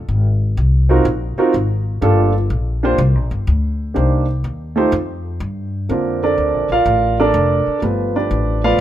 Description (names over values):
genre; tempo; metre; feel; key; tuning
jazz, big band swing; 124 BPM; 4/4; swing 68% on 8ths; Bb major; A4 = 440 Hz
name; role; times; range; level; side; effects
upright bass; bass; 0.0-8.8 s; F1 to G2; -17 LUFS; left 1 dB; none
warm grand piano; accompaniment; 0.9-8.8 s; D3 to F5; -16 LUFS; right 2 dB; none
room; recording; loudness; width
light reverb; minimal, uncompressed stereo recording; -15 LUFS; side -12 dB against mid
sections
0.0-5.9 A section; 5.9-8.8 B section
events
grand piano solo 5.9-8.8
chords
0.1 Ab13; 2.0 Gm9; 4.0 Cm9; 4.9 Fsus2; 5.9 Bbmaj7; 7.8 G7